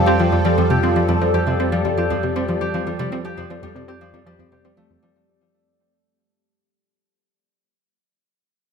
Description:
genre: ambient, sequencer-driven space music.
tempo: 118 BPM.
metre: 4/4.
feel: straight.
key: unclear.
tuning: A4 = 438 Hz.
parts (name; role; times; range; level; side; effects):
phased analog pad; sustained chords; 0.0-5.2 s; F3 to G5; -22 LUFS; right 2 dB; phaser, chorus.
Celtic harp; arpeggios; 0.0-8.1 s; F3 to G4; -23 LUFS; left 4 dB; auto-pan, ping-pong delay.
analog drone; bass; 0.0-5.1 s; F2; -24 LUFS; equal; chorus.
tight sequenced synth; riff; 0.1-5.1 s; F2 to C4; -23 LUFS; equal; chorus, ping-pong delay.
room: wet scoring stage reverb, RT60 1.8 s.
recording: none.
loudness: -17 LUFS.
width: side -6 dB against mid.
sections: 0.0-5.2 A section.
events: fade-out 0.0-5.2.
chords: 0.0 Fadd9.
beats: 0.07 0.58 | 1.09 1.60 2.10 2.61 | 3.12 3.63 4.14 4.65.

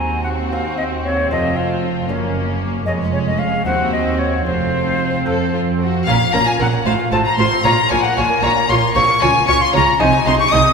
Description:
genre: classical, baroque-style concerto movement with solo episodes.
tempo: 76 BPM (dotted quarters).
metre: 6/8.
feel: straight.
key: Bb minor.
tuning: A4 = 442 Hz.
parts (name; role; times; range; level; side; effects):
rich chamber violin section; melody; 0.0-10.7 s; A4 to Eb6; -22 LUFS; left 4 dB; none.
silver concert flute; melody; 0.0-10.7 s; C5 to Eb6; -19 LUFS; left 2 dB; none.
rich chamber violin section; second line; 0.0-10.6 s; Db4 to Eb5; -24 LUFS; left 2 dB; none.
clear symphonic viola section; accompaniment; 0.0-10.6 s; Ab3 to F4; -24 LUFS; right 2 dB; none.
lute; accompaniment; 0.0-10.7 s; Eb2 to Eb5; -26 LUFS; right 1 dB; none.
clear chamber double bass section; bass; 0.0-10.6 s; F1 to F2; -22 LUFS; right 3 dB; none.
rich chamber cello section; bass; 0.0-10.6 s; Eb2 to F3; -23 LUFS; right 3 dB; none.
room: wet church reverb, RT60 3.3 s.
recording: recorded in a church or concert hall.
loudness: -14 LUFS.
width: side -5 dB against mid.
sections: 0.0-6.1 A section; 6.1-10.7 B section.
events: none.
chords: 0.0 Cdim/Eb; 1.3 F; 2.1 Gb; 2.9 Db/F; 3.7 Cdim/Eb; 4.5 F; 6.1 Bbm; 6.9 F/A; 7.6 Bbm; 9.2 Db; 10.0 Ab/C.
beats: 0.52 | 1.31 2.09 | 2.87 3.66 | 4.46 5.26 | 6.07 6.86 | 7.65 8.43 | 9.22 10.00.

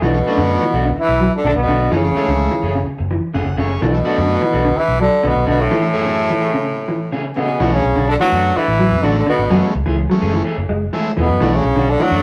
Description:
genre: afrobeat.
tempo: 127 BPM.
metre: 4/4.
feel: straight.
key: B dorian.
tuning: A4 = 439 Hz.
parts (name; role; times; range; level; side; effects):
bright trombone; melody; 0.0-12.2 s; A3 to F#4; -23 LUFS; equal; none.
growling tenor saxophone; second line; 0.0-12.2 s; A2 to F#3; -21 LUFS; equal; none.
overdriven combo organ; accompaniment; 0.0-12.2 s; F#2 to F#5; -26 LUFS; equal; none.
mellow electric guitar; arpeggios; 0.0-12.1 s; C#3 to G#3; -23 LUFS; equal; spring reverb.
electric guitar at the edge of break-up; stabs; 0.0-12.2 s; E3 to G#4; -28 LUFS; equal; spring reverb.
fingered electric bass; bass; 0.0-12.2 s; E1 to F#2; -22 LUFS; equal; none.
room: moderate studio reverb, RT60 0.5 s.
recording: rough rehearsal-room recording.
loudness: -16 LUFS.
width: mono.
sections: 0.0-7.6 A section; 7.6-12.2 B section.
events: transistor combo organ fill 3.1-3.8; break 5.7-7.6.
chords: 0.0 Bm7; 1.9 F#m9; 3.8 Bm7; 5.7 F#m9; 7.6 Bm7; 9.5 F#m9; 11.4 Bm7.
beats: | 0.02 0.50 0.97 1.45 | 1.92 2.40 2.87 3.35 | 3.82 4.29 4.77 5.24 | 5.71 6.19 6.66 7.14 | 7.61 8.08 8.56 9.03 | 9.50 9.98 10.45 10.93 | 11.40 11.87.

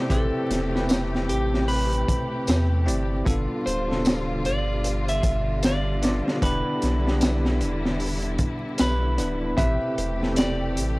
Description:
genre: trip hop.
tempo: 76 BPM.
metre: 4/4.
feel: swing 60% on 16ths.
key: A minor.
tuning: A4 = 441 Hz.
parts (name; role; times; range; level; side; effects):
clean electric guitar; melody; 0.0-11.0 s; G4 to E5; -30 LUFS; equal; tape echo.
bell-like tine electric piano; accompaniment; 0.0-11.0 s; B2 to D5; -29 LUFS; equal; tremolo, tape echo.
rich studio string section; sustained chords; 0.0-11.0 s; C3 to G4; -31 LUFS; equal; vintage 12-bit sampler grit.
soft dub sub bass; bass; 0.1-11.0 s; D1 to E2; -26 LUFS; equal; none.
crunchy breakbeat drum kit; drums; 0.1-11.0 s; hi-hat, kick drum, snare drum; -25 LUFS; equal; none.
tambourine; percussion; 0.9-10.6 s; none; -38 LUFS; left 2 dB; none.
room: small room ambience.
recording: dry, gritty hardware recording, vinyl crackle.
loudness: -21 LUFS.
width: side -23 dB against mid.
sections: 0.0-11.0 A section.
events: none.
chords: 0.0 Am9; 3.3 G7; 6.4 Em7; 9.6 Am9.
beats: | 0.11 0.90 1.69 2.48 | 3.27 4.05 4.84 5.63 | 6.42 7.21 8.00 8.79 | 9.58 10.37.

